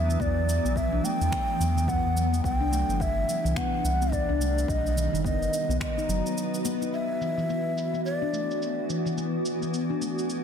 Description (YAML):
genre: organic downtempo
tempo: 107 BPM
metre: 4/4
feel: swing 59% on 16ths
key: E minor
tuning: A4 = 440 Hz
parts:
  - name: breathy mellow low ney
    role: melody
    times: 0.0-8.9 s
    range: D5 to G5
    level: -30 LUFS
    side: equal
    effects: ping-pong delay
  - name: granular cloud pad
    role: sustained chords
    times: 0.0-10.4 s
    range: C3 to B4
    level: -32 LUFS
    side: right 1 dB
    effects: built-in reverb, sidechain pumping
  - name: handpan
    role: arpeggios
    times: 0.0-10.2 s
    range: D#3 to D#4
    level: -31 LUFS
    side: left 3 dB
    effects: low-pass filter, digital delay
  - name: warm sub bass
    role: bass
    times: 0.0-6.2 s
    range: F#1 to E2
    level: -27 LUFS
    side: equal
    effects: sidechain pumping
  - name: electronic cabasa and finger snaps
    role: drums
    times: 0.1-10.4 s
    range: none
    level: -38 LUFS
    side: right 1 dB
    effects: low-pass filter on perc, soft clipping on snare, low-pass filter on snare, low-pass filter on room
  - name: electronic kick drum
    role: drums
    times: 0.2-5.9 s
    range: none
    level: -32 LUFS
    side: equal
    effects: none
room: light reverb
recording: dense, heavily limited modern master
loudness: -24 LUFS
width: side -7 dB against mid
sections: 0.0-6.9 A section; 6.9-10.4 B section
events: filter sweep on handpan 6.9-10.4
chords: 0.0 Em7; 2.4 Cmaj7; 4.7 B; 6.9 E5